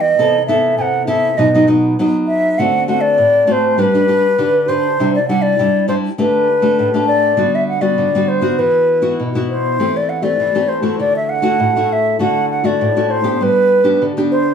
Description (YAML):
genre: samba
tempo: 100 BPM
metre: 4/4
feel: straight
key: G major from 3.8 s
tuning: A4 = 438 Hz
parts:
  - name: hollow wooden flute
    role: melody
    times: 0.0-14.5 s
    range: B4 to G#5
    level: -14 LUFS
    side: equal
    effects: none
  - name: nylon-string guitar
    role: accompaniment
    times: 0.0-14.5 s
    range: A2 to B4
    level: -16 LUFS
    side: left 1 dB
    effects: none
room: wet studio reverb, RT60 0.5 s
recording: band playing live in one room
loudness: -12 LUFS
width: side -7 dB against mid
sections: 0.0-3.8 A section; 3.8-14.5 B section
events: none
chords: 0.2 Amadd9/C; 1.4 B; 2.6 D7; 3.8 G; 5.0 Cadd9; 6.2 Dsus4; 7.4 Gmaj7/D; 8.6 Esus2; 9.8 Am7/E; 11.0 Dadd9; 13.4 G